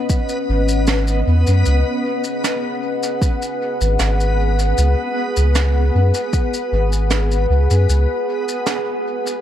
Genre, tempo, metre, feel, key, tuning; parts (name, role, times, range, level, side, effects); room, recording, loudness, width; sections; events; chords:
ambient dub; 77 BPM; 4/4; straight; A4 = 440 Hz
deep dark ambient pad; sustained chords; 0.0-9.4 s; C#4 to F#5; -21 LUFS; left 1 dB; chorus, built-in reverb
backwards swelling texture; texture; 0.0-9.4 s; B3 to B4; -26 LUFS; left 1 dB; built-in reverb
electronic kick drum; drums; 0.1-6.5 s; -18 LUFS; equal
shaker and snare drum; drums; 0.1-9.4 s; -24 LUFS; right 2 dB; dub echo
soft dub sub bass; bass; 0.5-8.1 s; G#1 to F#2; -15 LUFS; equal
light reverb; -15 LUFS; side -11 dB against mid
0.0-9.4 A section
0.0 C#7sus2; 1.7 G#m7